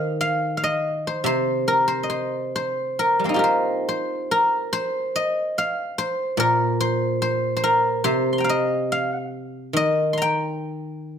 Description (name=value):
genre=chinese traditional, Chinese solo plucked strings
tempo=72 BPM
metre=2/4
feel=rubato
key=C yu mode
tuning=A4 = 440 Hz
part: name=guzheng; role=solo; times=0.0-11.2 s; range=Bb2 to C6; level=-20 LUFS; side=equal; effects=none
room=light reverb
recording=close, detailed microphones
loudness=-20 LUFS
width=side -8 dB against mid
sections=0.0-3.0 A section; 3.0-11.2 B section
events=none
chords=none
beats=0.42 | 1.26 2.11 | 3.00 3.88 | 4.72 5.55 | 6.38 7.20 | 8.04 8.88 | 9.74 10.59